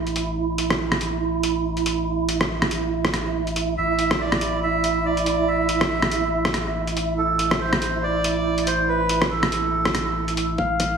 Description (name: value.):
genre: deep dubstep.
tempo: 141 BPM.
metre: 4/4.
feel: swing 57% on 16ths, half-time.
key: A minor.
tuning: A4 = 440 Hz.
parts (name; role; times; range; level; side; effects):
saturated sub bass; bass; 0.0-11.0 s; A1; -28 LUFS; equal; none.
wind-like tuned noise texture; texture; 0.0-11.0 s; E4 to A4; -25 LUFS; right 6 dB; built-in reverb.
trip hop sampler-style drum kit; drums; 0.1-10.9 s; hi-hat, rim click; -24 LUFS; equal; overdrive, studio reverb.
melodica; melody; 3.8-11.0 s; A4 to F5; -24 LUFS; right 1 dB; low-pass filter, dub echo.
electronic kick drum; drums; 10.6-10.9 s; none; -28 LUFS; equal; overdrive, high-pass filter on kick, studio reverb.
room: wet digital room reverb, RT60 1.1 s, digital ambience.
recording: heavily compressed radio sound, multiband compression, small room ambience.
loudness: -20 LUFS.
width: side -6 dB against mid.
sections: 0.0-10.6 A section.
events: none.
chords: 0.0 A5.